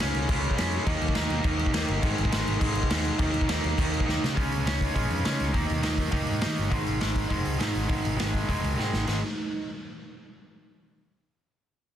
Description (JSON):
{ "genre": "punk rock", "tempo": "205 BPM", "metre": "4/4", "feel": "straight", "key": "unclear", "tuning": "A4 = 441 Hz", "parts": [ { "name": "raw garage guitar", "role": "riff", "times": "0.0-9.7 s", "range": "Ab2 to Eb4", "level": "-29 LUFS", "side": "right 1 dB", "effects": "overdrive" }, { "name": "picked electric bass", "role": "bass", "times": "0.0-9.2 s", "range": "F1 to Eb3", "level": "-30 LUFS", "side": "equal", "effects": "none" }, { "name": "raw garage drum kit", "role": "drums", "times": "0.0-9.1 s", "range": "crash cymbal, hi-hat, kick drum, snare drum, splash cymbal", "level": "-28 LUFS", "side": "equal", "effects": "none" } ], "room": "little or no reverb", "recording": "dense, heavily limited modern master", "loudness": "-24 LUFS", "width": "side -10 dB against mid", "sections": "0.0-4.4 A section; 4.4-9.1 B section; 9.1-10.3 C section", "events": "drum fill 4.1, 8.8", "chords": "0.0 Db; 0.9 Eb5; 2.0 Ab5; 3.2 Eb5; 4.4 Db5; 5.5 Eb5; 6.7 Ab5" }